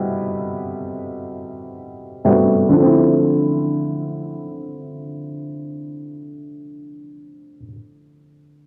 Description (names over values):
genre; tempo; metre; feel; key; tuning
R&B; free time; none; none; D minor; A4 = 441 Hz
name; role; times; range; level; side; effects
felt-muted upright piano; accompaniment; 0.0-8.7 s; B2 to F#4; -21 LUFS; equal; low-pass filter
room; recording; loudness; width
light reverb, small room ambience; dry, gritty hardware recording, transformer saturation, cassette tape; -18 LUFS; mono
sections
0.0-2.8 A section; 2.8-6.8 B section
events
filter sweep on felt piano 0.0-2.8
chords
0.0 Am9; 2.8 Dm9